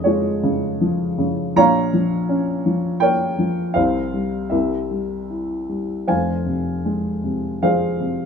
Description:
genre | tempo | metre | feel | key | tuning
classical, lyrical solo piano | 75-84 BPM | 3/4 | rubato | F minor | A4 = 440 Hz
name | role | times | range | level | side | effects
dark upright piano | solo | 0.0-8.3 s | F1 to Bb5 | -18 LUFS | equal | none
room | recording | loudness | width
moderate studio reverb, RT60 0.7 s | minimal, uncompressed stereo recording | -18 LUFS | side -6 dB against mid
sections
0.0-8.3 A section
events
none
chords
0.0 Db/F; 1.6 Bbm; 3.8 Csus4; 4.5 C7; 6.1 Fm

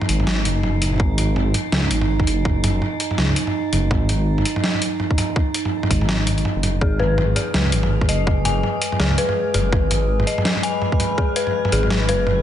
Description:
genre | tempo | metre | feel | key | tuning
half-time drum and bass | 165 BPM | 4/4 | swing 60% on 16ths, half-time | G# minor | A4 = 439 Hz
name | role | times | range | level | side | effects
boom bap sampler-style drum kit | drums | 0.0-12.4 s | hi-hat, snare drum, toms | -22 LUFS | equal | none
metallic inharmonic drone | texture | 0.0-12.4 s | G#3 to B4 | -26 LUFS | right 4 dB | chorus, built-in reverb
dark detuned saw bass | bass | 0.1-12.4 s | F#1 to C#2 | -20 LUFS | equal | tube saturation
electronic kick drum | drums | 1.0-11.3 s | none | -20 LUFS | equal | overdrive
dark detuned synth bell | arpeggios | 6.8-12.4 s | G#4 to G#5 | -23 LUFS | left 3 dB | chorus, digital delay
room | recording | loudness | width
light reverb | nothing above 10.9 kHz | -17 LUFS | side -10 dB against mid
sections
0.0-12.4 A section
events
none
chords
0.0 G#5

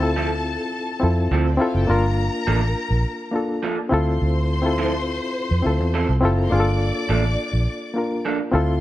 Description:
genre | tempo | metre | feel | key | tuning
soul | 104 BPM | 4/4 | straight | unclear | A4 = 439 Hz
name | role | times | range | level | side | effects
warm studio string section | second line | 0.0-8.8 s | C4 to D6 | -29 LUFS | left 2 dB | none
barky reed electric piano | accompaniment | 0.0-8.8 s | Bb3 to Bb4 | -23 LUFS | left 2 dB | fast tremolo
vintage muted fingered electric bass | bass | 0.0-8.8 s | F#1 to F2 | -20 LUFS | equal | none
electric guitar through a small old amp | riff | 0.2-8.4 s | F3 to A4 | -27 LUFS | right 6 dB | lush chorus
room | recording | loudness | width
light reverb, digital ambience | dark, warm production | -19 LUFS | side -15 dB against mid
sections
0.0-8.8 A section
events
none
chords
0.0 Dm9; 1.9 Gm9; 3.9 Dm9; 6.5 Gm9

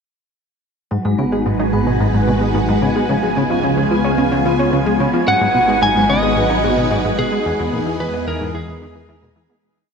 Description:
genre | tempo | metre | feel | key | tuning
ambient, sequencer-driven space music | 110 BPM | 4/4 | straight | G# minor | A4 = 440 Hz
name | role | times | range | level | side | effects
phased string machine | sustained chords | 0.9-9.6 s | C#3 to D#5 | -20 LUFS | right 1 dB | ensemble chorus, phaser
vibraphone with medium mallets | arpeggios | 0.9-9.6 s | E#3 to G#4 | -23 LUFS | left 2 dB | auto-pan, tape echo
plucky analog bass | riff | 0.9-9.5 s | E2 to D#4 | -20 LUFS | equal | wide subtle chorus, tape echo
analog drone | bass | 1.3-9.6 s | G#1 to E2 | -25 LUFS | equal | chorus
bubbling stepped-filter texture | texture | 0.9-9.7 s | G#5 | -27 LUFS | right 1 dB | chorus, built-in reverb
lightly driven lead guitar | melody | 5.3-9.3 s | G#4 to G#5 | -18 LUFS | equal | tape echo
room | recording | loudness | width
wet shimmer reverb, RT60 7.6 s | none | -14 LUFS | side -6 dB against mid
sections
0.9-9.6 A section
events
fade-out 6.7-9.6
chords
0.9 G#m7; 3.1 C#7; 5.3 G#m7; 7.5 Emaj7

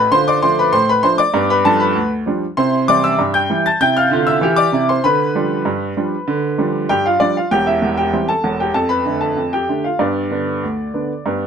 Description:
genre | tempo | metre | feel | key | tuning
ragtime piano | 97 BPM | 2/4 | straight | C major | A4 = 441 Hz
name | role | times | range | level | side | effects
clear upright piano | solo | 0.0-11.5 s | E1 to A6 | -14 LUFS | equal | none
room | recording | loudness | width
moderate studio reverb, RT60 0.8 s | close, detailed microphones | -14 LUFS | side -7 dB against mid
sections
0.0-11.5 A section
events
none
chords
0.1 Dm; 1.3 G7; 2.6 C; 5.0 G7; 7.5 C/E; 8.7 Dm/F; 10.0 G

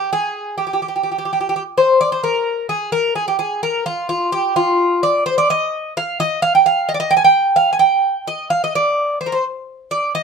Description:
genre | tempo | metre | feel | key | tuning
greek folk | 257 BPM (eighths) | 7/8 | straight | G phrygian | A4 = 440 Hz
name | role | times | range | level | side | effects
Greek bouzouki | solo | 0.0-10.2 s | F4 to Ab5 | -15 LUFS | right 1 dB | none
room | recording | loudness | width
light reverb | close, detailed microphones | -15 LUFS | side -5 dB against mid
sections
0.0-2.2 A section; 2.2-10.2 B section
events
none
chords
none

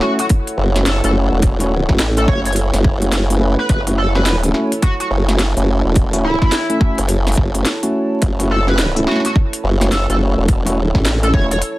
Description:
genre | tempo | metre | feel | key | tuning
glitch hop | 106 BPM | 4/4 | swing 63% on 16ths | F# minor | A4 = 441 Hz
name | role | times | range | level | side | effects
sync lead | melody | 0.0-11.6 s | E4 to C#5 | -22 LUFS | equal | lush chorus, tape echo
dark analog pad | sustained chords | 0.0-11.8 s | E4 to A5 | -26 LUFS | right 2 dB | chorus, sidechain pumping
tine electric piano | stabs | 0.0-11.5 s | A3 to B4 | -21 LUFS | equal | vintage 12-bit sampler grit, sidechain pumping, tape echo
drum and bass drum kit | drums | 0.0-11.8 s | hi-hat, snare drum | -20 LUFS | equal | none
electronic kick drum | drums | 0.3-11.5 s | none | -15 LUFS | equal | none
formant-sweep wobble bass | bass | 0.6-11.6 s | E1 to A1 | -16 LUFS | equal | chorus, tube saturation
room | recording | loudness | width
light reverb | dense, heavily limited modern master, vinyl crackle | -13 LUFS | side -17 dB against mid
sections
0.0-11.8 A section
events
break 11.6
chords
0.0 F#m7

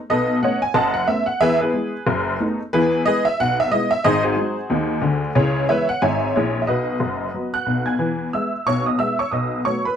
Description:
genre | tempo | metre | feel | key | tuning
jazz, stride piano | 182 BPM | 4/4 | swing 59% on 8ths | E major | A4 = 440 Hz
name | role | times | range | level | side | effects
honky-tonk upright piano | solo | 0.1-10.0 s | F#1 to G#6 | -18 LUFS | equal | none
room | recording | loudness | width
light reverb | none | -18 LUFS | side -8 dB against mid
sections
0.0-8.0 A section; 8.0-10.0 B section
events
none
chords
0.1 B9; 1.4 E; 2.1 B7/F#; 2.7 E; 4.0 G#7; 5.4 C#m7; 6.7 B; 8.0 E; 9.3 B7

